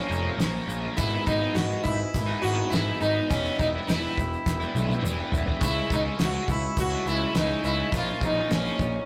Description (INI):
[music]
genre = psychedelic rock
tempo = 104 BPM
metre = 4/4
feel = straight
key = C# dorian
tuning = A4 = 440 Hz
[part]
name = sitar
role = melody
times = 0.0-9.1 s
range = C#4 to F#4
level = -31 LUFS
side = equal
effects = none
[part]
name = combo organ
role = sustained chords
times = 0.0-9.1 s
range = A#4 to C#6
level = -40 LUFS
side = equal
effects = none
[part]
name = cranked stack guitar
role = riff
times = 0.0-8.9 s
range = G#2 to E#4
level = -35 LUFS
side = equal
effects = overdrive, rotary speaker
[part]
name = fuzz picked electric bass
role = bass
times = 0.1-9.0 s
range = E1 to C#2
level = -32 LUFS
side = equal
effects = overdrive
[part]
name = tube shaker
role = percussion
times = 0.1-8.9 s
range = none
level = -49 LUFS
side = equal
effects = none
[part]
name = cloth-damped thuddy drum kit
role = drums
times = 0.4-8.9 s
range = hi-hat, kick drum, snare drum, toms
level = -31 LUFS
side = equal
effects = none
[sound]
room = moderate stone room reverb, RT60 1.4 s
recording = rough rehearsal-room recording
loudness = -26 LUFS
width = mono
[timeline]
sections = 0.0-9.1 A section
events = drum fill 4.5-5.6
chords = 0.0 A#m; 1.0 G#m; 3.3 Em; 5.6 C#m; 7.9 A#m